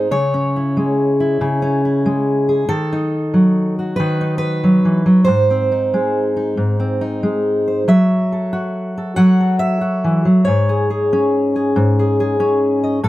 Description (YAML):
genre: folk, solo fingerstyle acoustic guitar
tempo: 46 BPM (dotted quarters)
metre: 6/8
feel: straight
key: unclear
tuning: A4 = 440 Hz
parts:
  - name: fingerpicked steel-string acoustic guitar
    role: solo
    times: 0.0-13.1 s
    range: G#2 to F#5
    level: -14 LUFS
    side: equal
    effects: none
room: light reverb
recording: close, detailed microphones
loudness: -14 LUFS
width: side -16 dB against mid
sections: 0.0-13.1 A section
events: none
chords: 0.1 C#m; 2.7 D#dim; 5.3 G#; 7.9 F#m7; 10.5 G#sus4